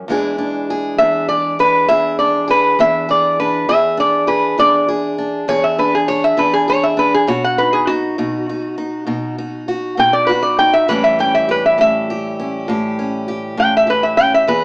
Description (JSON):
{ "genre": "acoustic country blues, solo or duo", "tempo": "67 BPM (dotted quarters)", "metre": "12/8", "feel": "straight", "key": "E mixolydian", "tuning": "A4 = 438 Hz", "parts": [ { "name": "fingerpicked steel-string acoustic guitar", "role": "accompaniment", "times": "0.0-14.6 s", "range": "E2 to G#4", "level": "-19 LUFS", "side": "equal", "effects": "none" }, { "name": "lap resonator guitar", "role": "melody", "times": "1.0-14.6 s", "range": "F#4 to G5", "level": "-13 LUFS", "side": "equal", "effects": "none" } ], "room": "moderate studio reverb, RT60 0.6 s", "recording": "small speaker sound", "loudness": "-13 LUFS", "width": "side -40 dB against mid", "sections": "0.0-14.6 A section", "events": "resonator guitar played with a steel bar solo 0.0-14.6", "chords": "0.1 E7; 7.3 B; 10.9 A7", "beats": "| 0.09 0.98 1.88 2.78 | 3.68 4.58 5.48 6.38 | 7.27 8.17 9.07 9.97 | 10.87 11.77 12.67 13.57 | 14.48" }